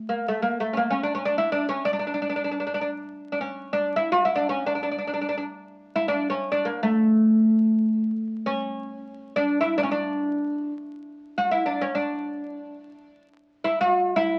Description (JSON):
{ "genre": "Turkish makam ensemble", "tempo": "free time", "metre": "none", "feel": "none", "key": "unclear", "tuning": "A4 = 440 Hz", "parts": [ { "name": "oud", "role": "solo", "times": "0.1-14.4 s", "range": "A3 to F#4-40c", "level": "-25 LUFS", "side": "equal", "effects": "none" } ], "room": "moderate studio reverb, RT60 0.8 s", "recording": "very old 78 rpm record, vinyl crackle", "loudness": "-25 LUFS", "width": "mono", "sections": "0.0-14.4 A section", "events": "none", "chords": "none" }